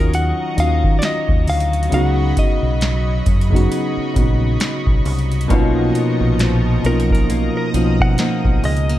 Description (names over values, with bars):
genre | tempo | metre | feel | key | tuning
contemporary R&B | 67 BPM | 4/4 | swing 58% on 16ths | unclear | A4 = 440 Hz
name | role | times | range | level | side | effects
direct-recorded clean electric guitar | melody | 0.0-9.0 s | Bb4 to Gb5 | -23 LUFS | left 1 dB | tape echo
felt-muted upright piano | accompaniment | 0.0-9.0 s | B2 to Gb4 | -21 LUFS | equal | none
lush unison pad | sustained chords | 0.0-9.0 s | E#3 to D#6 | -26 LUFS | right 1 dB | chorus
deep dub fingered electric bass | bass | 0.0-9.0 s | Bb1 to Eb3 | -18 LUFS | equal | none
impact | sound effects | 0.0-1.9 s | none | barely audible | none | none
booming analog drum machine | drums | 0.1-9.0 s | hi-hat, kick drum, snare drum | -18 LUFS | equal | none
flamenco guitar | arpeggios | 5.5-9.0 s | B2 to D#4 | -24 LUFS | left 3 dB | none
room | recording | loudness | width
little or no reverb | dark, warm production | -14 LUFS | side -14 dB against mid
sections
0.0-9.0 A section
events
impact 0.0-1.9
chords
0.0 Ebm9; 1.9 Db9sus4; 5.5 Bmaj9#11